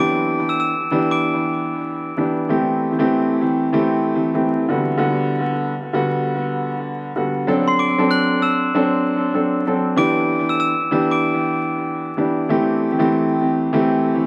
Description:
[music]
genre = hip hop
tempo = 96 BPM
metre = 4/4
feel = swing 61% on 16ths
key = E minor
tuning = A4 = 437 Hz
[part]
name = glockenspiel with brass mallets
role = melody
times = 0.0-2.0, 7.7-12.0 s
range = C6 to F#7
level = -25 LUFS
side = equal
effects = high-pass filter, low-pass filter, analog delay
[part]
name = warm upright piano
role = accompaniment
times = 0.0-14.3 s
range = D3 to A4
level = -20 LUFS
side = equal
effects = high-pass filter, low-pass filter, analog delay
[sound]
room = moderate spring reverb, RT60 1.5 s, studio ambience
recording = echo-heavy mix, vinyl crackle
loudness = -19 LUFS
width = mono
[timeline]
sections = 0.0-7.5 A section; 7.5-14.3 B section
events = none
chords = 0.0 Em7; 2.5 Am7; 4.7 Gmaj7; 7.5 D7; 10.0 Em7; 12.5 Am7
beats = 0.61 1.24 1.86 | 2.48 3.11 3.73 4.36 | 4.99 5.61 6.24 6.86 | 7.49 8.11 8.73 9.36 | 9.98 10.61 11.23 11.86 | 12.48 13.11 13.73

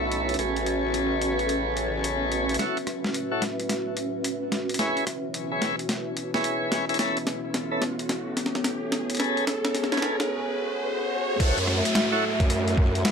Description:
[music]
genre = glitch hop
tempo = 109 BPM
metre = 4/4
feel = swing 64% on 16ths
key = F# minor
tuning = A4 = 439 Hz
[part]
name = dark analog pad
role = sustained chords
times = 0.0-13.1 s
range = A3 to E5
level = -31 LUFS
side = equal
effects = chorus, vintage 12-bit sampler grit, sidechain pumping
[part]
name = tonewheel organ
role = stabs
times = 0.0-12.2 s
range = C#4 to C#5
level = -28 LUFS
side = left 1 dB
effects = slow rotary speaker, vintage 12-bit sampler grit, sidechain pumping, ping-pong delay
[part]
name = growl bass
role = bass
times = 0.0-2.6, 11.4-13.0 s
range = F#1 to F#2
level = -29 LUFS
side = equal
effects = chorus
[part]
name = granular cloud pad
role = texture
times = 0.0-10.3 s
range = C#4 to E5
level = -31 LUFS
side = right 1 dB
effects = built-in reverb, sidechain pumping
[part]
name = boom bap sampler-style drum kit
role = drums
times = 0.1-13.1 s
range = hi-hat, rim click, snare drum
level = -28 LUFS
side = equal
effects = studio reverb
[part]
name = riser, swell and downlifter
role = sound effects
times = 5.4-13.1 s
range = none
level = -32 LUFS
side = equal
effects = none
[part]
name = electronic kick drum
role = drums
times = 11.4-12.9 s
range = none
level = -21 LUFS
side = equal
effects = studio reverb
[sound]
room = wet small room reverb, RT60 0.5 s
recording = high-pass filter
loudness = -24 LUFS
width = side -6 dB against mid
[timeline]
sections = 0.0-2.6 A section; 2.6-11.4 B section; 11.4-13.1 C section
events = build-up 2.6-11.4; drum fill 2.6-10.3; filter sweep on analog synth pad 2.6-11.4; riser 5.4-11.4; break 10.3-11.4; swell 10.3-11.4; drop 11.4-13.1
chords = 0.4 Amaj9; 2.6 F#m7; 4.8 C#m7; 7.0 B9sus4; 9.2 Amaj9; 11.4 F#m7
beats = | 0.39 0.94 1.49 2.04 | 2.59 3.14 3.69 4.24 | 4.79 5.34 5.89 6.45 | 7.00 7.55 8.10 8.65 | 9.20 9.75 10.30 10.85 | 11.40 11.95 12.50 13.05

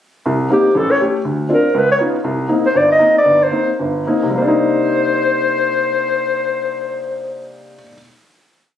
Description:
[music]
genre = jazz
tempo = 206-241 BPM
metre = 4/4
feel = swing 59% on 8ths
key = C minor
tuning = A4 = 443 Hz
[part]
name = warm grand piano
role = accompaniment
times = 0.3-8.0 s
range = G1 to G4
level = -18 LUFS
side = left 1 dB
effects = none
[part]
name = dark clarinet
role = melody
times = 0.5-7.5 s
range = G4 to Eb5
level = -14 LUFS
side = left 1 dB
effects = none
[sound]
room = light reverb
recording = recorded on a phone in the room, studio reverb, compression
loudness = -13 LUFS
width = side -10 dB against mid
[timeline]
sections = 0.2-4.4 A section; 4.4-6.7 final chord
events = slowing down 2.2-4.4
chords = 0.2 Cm7; 0.7 A7; 1.2 Bbadd9/D; 1.7 Db9; 2.2 Cm7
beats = | 0.25 0.50 0.75 1.00 | 1.25 1.49 1.74 1.99 | 2.24 2.49 2.74 3.00 | 3.25 3.52 3.79 4.07 | 4.35 4.64 4.93 5.23 | 5.52 5.81 6.10 6.39

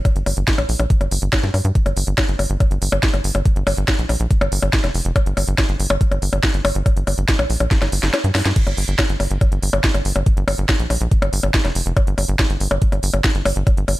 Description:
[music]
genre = psychedelic trance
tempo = 141 BPM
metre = 4/4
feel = straight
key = G minor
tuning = A4 = 440 Hz
[part]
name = electronic kick drum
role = drums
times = 0.1-13.8 s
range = none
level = -17 LUFS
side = equal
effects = none
[part]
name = techno drum kit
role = drums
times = 0.1-14.0 s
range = crash cymbal, hi-hat, percussion blips, snare drum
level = -21 LUFS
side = left 1 dB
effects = none
[part]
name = tight sequencer bass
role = bass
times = 0.2-14.0 s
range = F1 to G2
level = -19 LUFS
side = equal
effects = none
[sound]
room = digital ambience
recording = none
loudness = -16 LUFS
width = side -17 dB against mid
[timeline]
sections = 0.0-8.6 A section; 8.6-14.0 B section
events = drum fill 7.7-8.6; kick drops out 8.1-8.6; drop 8.6-14.0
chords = none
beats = | 0.05 0.48 0.90 1.33 | 1.75 2.18 2.60 3.03 | 3.46 3.88 4.31 4.73 | 5.16 5.58 6.01 6.43 | 6.86 7.29 7.71 8.14 | 8.56 8.99 9.41 9.84 | 10.26 10.69 11.11 11.54 | 11.97 12.39 12.82 13.24 | 13.67

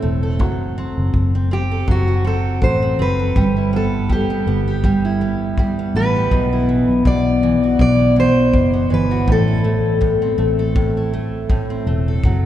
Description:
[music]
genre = acoustic pop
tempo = 81 BPM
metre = 4/4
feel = swing 55% on 16ths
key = unclear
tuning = A4 = 440 Hz
[part]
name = picked steel-string acoustic guitar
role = accompaniment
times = 0.0-12.5 s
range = A2 to A4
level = -19 LUFS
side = right 1 dB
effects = none
[part]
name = vintage muted fingered electric bass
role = bass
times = 0.0-12.5 s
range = E1 to B1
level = -19 LUFS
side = equal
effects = none
[part]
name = kick drum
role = drums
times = 0.4-12.4 s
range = none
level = -22 LUFS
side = equal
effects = none
[part]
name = fingerpicked steel-string acoustic guitar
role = melody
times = 1.5-10.4 s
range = F#4 to D5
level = -21 LUFS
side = left 2 dB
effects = none
[sound]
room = wet cathedral reverb, RT60 4.9 s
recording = recorded in a church or concert hall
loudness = -15 LUFS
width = side -12 dB against mid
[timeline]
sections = 0.0-12.5 A section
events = none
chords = 0.4 F#dim; 3.4 Em/G; 6.3 Bsus4; 9.3 Am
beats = | 0.40 1.14 1.88 2.62 | 3.36 4.10 4.84 5.58 | 6.32 7.06 7.80 8.54 | 9.28 10.01 10.75 11.49 | 12.23

